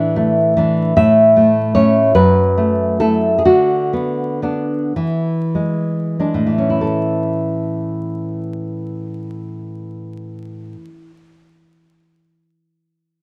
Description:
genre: romantic piece for solo classical guitar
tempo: 30-52 BPM (dotted quarters)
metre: 6/8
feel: rubato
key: A major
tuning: A4 = 439 Hz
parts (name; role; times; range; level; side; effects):
- nylon-string guitar; solo; 0.0-11.2 s; F#2 to E5; -17 LUFS; equal; none
room: wet spring reverb, RT60 1.6 s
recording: dark, warm production, vinyl crackle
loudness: -16 LUFS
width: mono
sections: 0.0-6.8 A section; 6.8-10.2 B section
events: slowing down 0.0-6.8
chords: 0.0 E7/A; 1.0 A; 2.2 F#m7; 3.5 Bm/D; 5.0 E7; 6.8 A

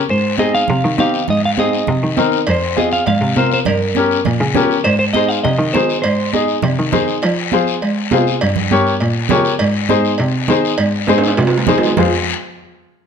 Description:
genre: latin, cumbia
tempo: 202 BPM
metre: 4/4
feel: straight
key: unclear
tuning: A4 = 440 Hz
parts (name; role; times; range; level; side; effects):
- clear cello; bass; 0.0-12.1 s; F2 to Ab3; -18 LUFS; equal; none
- clean electric guitar; melody; 0.1-6.3 s; Bb4 to F5; -18 LUFS; right 1 dB; spring reverb
- congas; percussion; 0.1-12.0 s; none; -22 LUFS; right 8 dB; none
- guiro; percussion; 0.1-12.0 s; none; -25 LUFS; left 9 dB; none
- warm upright piano; accompaniment; 0.4-12.1 s; C4 to Eb5; -18 LUFS; left 4 dB; none
- cowbell and timbales; percussion; 2.5-12.0 s; none; -21 LUFS; right 5 dB; none
room: light reverb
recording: close, detailed microphones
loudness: -13 LUFS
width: side -7 dB against mid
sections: 0.0-7.2 A section; 7.2-12.0 B section; 12.0-13.1 C section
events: drum fill 11.1-12.0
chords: 0.1 Ab; 2.5 Fm; 3.7 Gdim; 4.8 Ab; 7.2 Fm; 8.4 Gdim; 9.6 Ab; 12.0 Fm

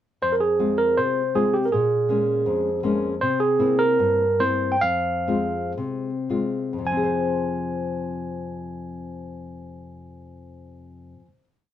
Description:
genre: fado-style ballad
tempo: 49-82 BPM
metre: 2/4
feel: rubato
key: F harmonic minor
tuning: A4 = 440 Hz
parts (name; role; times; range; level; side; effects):
- barky tine electric piano; melody; 0.2-11.3 s; G4 to Ab5; -22 LUFS; right 2 dB; none
- nylon-string guitar; accompaniment; 0.2-11.4 s; F2 to C5; -26 LUFS; left 4 dB; none
room: moderate studio ambience, RT60 0.5 s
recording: dark, warm production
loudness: -20 LUFS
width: side -11 dB against mid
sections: 0.2-6.9 A section; 6.9-11.5 final chord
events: slowing down 3.2-6.9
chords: 0.2 Fm; 1.7 Bbm7; 3.2 C7; 4.8 Fm

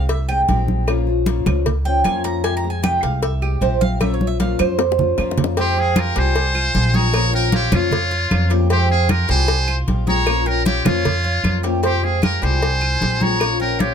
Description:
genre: latin, Cuban son and guajira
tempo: 153 BPM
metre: 4/4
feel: straight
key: F minor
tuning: A4 = 442 Hz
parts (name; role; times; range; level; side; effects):
- picked old ladder-braced acoustic guitar; accompaniment; 0.0-13.9 s; C3 to C5; -25 LUFS; left 8 dB; none
- Cuban tres; arpeggios; 0.0-13.9 s; G3 to Bb5; -24 LUFS; right 6 dB; none
- upright bass; bass; 0.0-13.9 s; Bb1 to F2; -20 LUFS; equal; none
- congas; percussion; 0.1-13.9 s; none; -22 LUFS; equal; none
- cowbell and bongos; percussion; 0.1-13.9 s; none; -26 LUFS; left 4 dB; none
- claves; percussion; 0.3-13.6 s; none; -31 LUFS; right 7 dB; none
- trumpet with metal mute; melody; 5.6-13.9 s; F4 to Db5; -21 LUFS; left 1 dB; none
- breathy bright jazz flute; second line; 5.6-13.9 s; C5 to Bb5; -28 LUFS; right 6 dB; none
room: light reverb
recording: close, detailed microphones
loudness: -16 LUFS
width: side -7 dB against mid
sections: 0.0-5.6 A section; 5.6-13.9 B section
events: Cuban tres solo 0.0-5.6; drum fill 4.0-5.6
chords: 0.0 Fmadd9; 0.9 Bbmadd9; 2.4 Fmadd9; 4.0 Bbmadd9; 5.6 Fmadd9; 7.1 Bbmadd9; 8.7 Fmadd9; 10.3 Bbmadd9; 11.8 Fmadd9; 13.4 Bbmadd9

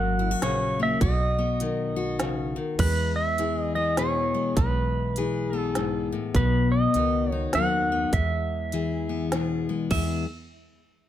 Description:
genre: honky-tonk and classic country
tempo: 101 BPM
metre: 3/4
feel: swing 61% on 8ths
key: E major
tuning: A4 = 435 Hz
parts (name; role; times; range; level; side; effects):
- pedal steel guitar; melody; 0.0-9.3 s; B4 to F#5; -27 LUFS; right 2 dB; none
- picked steel-string acoustic guitar; accompaniment; 0.0-10.3 s; E2 to G#4; -27 LUFS; left 5 dB; none
- upright bass; bass; 0.0-10.2 s; G#1 to E2; -28 LUFS; right 1 dB; none
- organic electronic drum kit; drums; 0.4-10.1 s; crash cymbal, hi-hat, kick drum, snare drum; -29 LUFS; right 1 dB; none
- clean electric guitar; second line; 9.9-10.2 s; E5; -33 LUFS; right 6 dB; tape echo
room: light reverb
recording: none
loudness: -23 LUFS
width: side -11 dB against mid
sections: 0.0-2.8 A section; 2.8-9.9 B section; 9.9-11.1 C section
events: none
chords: 0.0 F#; 1.0 B; 2.8 E; 6.3 B; 8.1 E

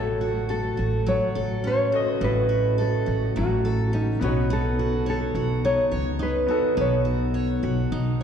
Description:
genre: acoustic pop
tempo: 105 BPM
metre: 4/4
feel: straight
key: unclear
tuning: A4 = 440 Hz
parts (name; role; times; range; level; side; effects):
- nylon-string guitar; melody; 0.0-8.2 s; D#4 to C#5; -25 LUFS; equal; none
- clear grand piano; accompaniment; 0.0-8.2 s; A3 to D#5; -33 LUFS; left 5 dB; none
- picked steel-string acoustic guitar; accompaniment; 0.0-8.2 s; A2 to C#5; -28 LUFS; right 2 dB; none
- mellow tonewheel organ; sustained chords; 0.0-8.2 s; C#3 to F#4; -34 LUFS; left 3 dB; none
- upright bass; bass; 0.0-8.2 s; A1 to C#2; -26 LUFS; equal; none
room: wet church reverb, RT60 3.2 s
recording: recorded in a church or concert hall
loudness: -21 LUFS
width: side -8 dB against mid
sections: 0.0-8.2 A section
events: none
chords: 0.0 F#m/A; 4.2 Badd9

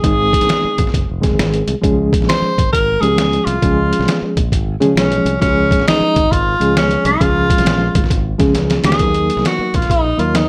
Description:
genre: uptempo 1960s-style soul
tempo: 134 BPM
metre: 4/4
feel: swing 65% on 8ths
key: unclear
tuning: A4 = 440 Hz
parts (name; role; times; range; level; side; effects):
- clear tenor saxophone; melody; 0.0-10.5 s; Db4 to C5; -19 LUFS; equal; none
- bright reed electric piano; accompaniment; 0.0-10.5 s; Eb3 to Bb4; -20 LUFS; equal; overdrive, fast tremolo
- modern bright fingered electric bass; bass; 0.0-10.5 s; F1 to Db3; -22 LUFS; equal; none
- trip hop sampler-style drum kit; drums; 0.0-10.5 s; hi-hat, kick drum, snare drum; -20 LUFS; equal; overdrive
room: light reverb, digital ambience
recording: none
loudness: -15 LUFS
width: mono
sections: 0.0-9.0 A section; 9.0-10.5 B section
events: drum fill 8.6-9.0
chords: 0.0 Ab; 1.8 Db; 9.0 Ebm

